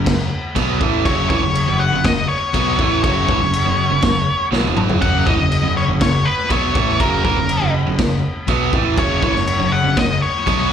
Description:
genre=quiet-loud alternative rock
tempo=121 BPM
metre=4/4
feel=straight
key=unclear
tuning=A4 = 441 Hz
part: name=cranked stack guitar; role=riff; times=0.0-10.7 s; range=E2 to B3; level=-21 LUFS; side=right 9 dB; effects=overdrive, slapback echo
part: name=thick fuzz guitar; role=riff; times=0.0-10.7 s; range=E2 to B3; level=-23 LUFS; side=left 8 dB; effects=distortion, slapback echo
part: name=growling picked electric bass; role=bass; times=0.0-10.7 s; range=E1 to B1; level=-23 LUFS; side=equal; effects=overdrive
part: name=raw garage drum kit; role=drums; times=0.1-10.6 s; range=crash cymbal, kick drum, snare drum, toms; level=-20 LUFS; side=equal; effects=none
part: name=octave-fuzz lead guitar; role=melody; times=1.1-10.7 s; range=A#4 to F#5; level=-20 LUFS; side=left 2 dB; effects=distortion, plate reverb, slapback echo, digital delay
room=light reverb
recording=live gig heard through the venue's PA, club reverb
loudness=-14 LUFS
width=side -8 dB against mid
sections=0.0-10.7 A section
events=drum fill 4.5-5.0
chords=0.0 F#5

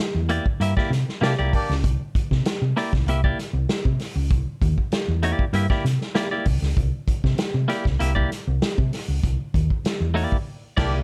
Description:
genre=funk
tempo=97 BPM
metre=4/4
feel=straight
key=C mixolydian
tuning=A4 = 438 Hz
part: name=hollow-body short-scale fingered electric bass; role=bass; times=0.1-11.0 s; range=C2 to C3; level=-25 LUFS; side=equal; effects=none
part: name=clean electric guitar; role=accompaniment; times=0.3-11.0 s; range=Bb3 to E5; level=-28 LUFS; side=equal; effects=plate reverb
part: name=vintage drum kit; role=drums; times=0.3-11.0 s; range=crash cymbal, hi-hat, kick drum, snare drum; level=-26 LUFS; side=equal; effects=none
part: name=clear horn section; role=second line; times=1.2-1.7, 10.8-10.9 s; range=Bb3 to D5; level=-31 LUFS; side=equal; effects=plate reverb
room=little or no reverb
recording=dark, warm production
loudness=-23 LUFS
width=mono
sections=0.0-11.0 A section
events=band accent 0.0-1.8, 9.2-11.0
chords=0.0 C9

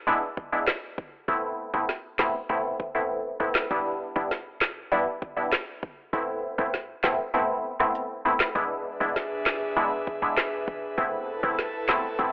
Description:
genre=dancehall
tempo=99 BPM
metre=4/4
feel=straight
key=A minor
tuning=A4 = 439 Hz
part: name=wavetable chord stab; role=accompaniment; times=0.1-12.3 s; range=G3 to E4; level=-26 LUFS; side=equal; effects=phaser
part: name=afro-pop drum kit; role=drums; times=0.4-12.3 s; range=handclaps, hi-hat, kick drum, rim click, snare drum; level=-27 LUFS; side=equal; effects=none
part: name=short 808-style bass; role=bass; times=1.3-12.3 s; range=E1 to C2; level=-40 LUFS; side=equal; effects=none
part: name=airy breathy pad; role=sustained chords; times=8.6-12.3 s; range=D4 to A5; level=-31 LUFS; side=equal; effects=chorus
room=light reverb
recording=worn, warbling old tape, cassette tape, warbly pitch drift, telephone sound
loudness=-24 LUFS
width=side -23 dB against mid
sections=0.0-8.6 A section; 8.6-12.3 B section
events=kick muted 7.3-8.6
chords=0.0 E7; 1.3 Amadd9; 3.7 Em7; 6.1 Amadd9; 8.6 E7; 11.0 Amadd9

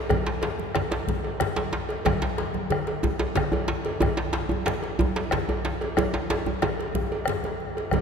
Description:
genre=west african traditional, West African drum ensemble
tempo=123 BPM (dotted quarters)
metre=12/8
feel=straight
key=none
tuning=none
part: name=bombo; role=percussion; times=0.1-8.0 s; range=none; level=-30 LUFS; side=left 2 dB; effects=none
part: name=congas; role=percussion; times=0.1-8.0 s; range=none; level=-31 LUFS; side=right 3 dB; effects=none
part: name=cowbell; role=percussion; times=0.1-8.0 s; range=none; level=-32 LUFS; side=right 2 dB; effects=none
part: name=djembe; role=percussion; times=0.1-8.0 s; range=none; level=-32 LUFS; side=left 5 dB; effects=none
part: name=djembe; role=percussion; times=0.3-6.8 s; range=none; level=-29 LUFS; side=right 1 dB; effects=none
room=wet cathedral reverb, RT60 5.8 s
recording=recorded in a church or concert hall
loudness=-24 LUFS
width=side -6 dB against mid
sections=0.0-8.0 A section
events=none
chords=none

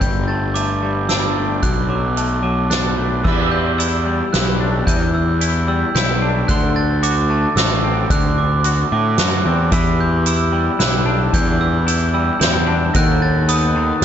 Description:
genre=post-rock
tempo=111 BPM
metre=3/4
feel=straight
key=unclear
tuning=A4 = 441 Hz
part: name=glockenspiel with soft plastic mallets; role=arpeggios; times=0.0-14.0 s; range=D6 to A6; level=-22 LUFS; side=right 5 dB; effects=tape echo
part: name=twangy electric guitar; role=arpeggios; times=0.0-14.0 s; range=B2 to F#4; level=-23 LUFS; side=left 5 dB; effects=analog chorus, tape echo
part: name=fuzz picked electric bass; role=bass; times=0.0-14.0 s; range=G1 to A2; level=-19 LUFS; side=equal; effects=overdrive
part: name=soft-mallet drum kit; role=drums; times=0.0-14.0 s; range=crash cymbal, hi-hat, kick drum, snare drum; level=-20 LUFS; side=equal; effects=none
part: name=pedal steel guitar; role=sustained chords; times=3.3-14.0 s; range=G4 to C6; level=-28 LUFS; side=equal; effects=none
room=light reverb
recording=nothing above 7.8 kHz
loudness=-15 LUFS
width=side -9 dB against mid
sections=0.0-3.3 A section; 3.3-14.0 B section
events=none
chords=0.0 Gsus2; 1.6 Bm7; 3.3 Em7; 6.5 D7; 9.7 Em7; 13.0 B7/D#

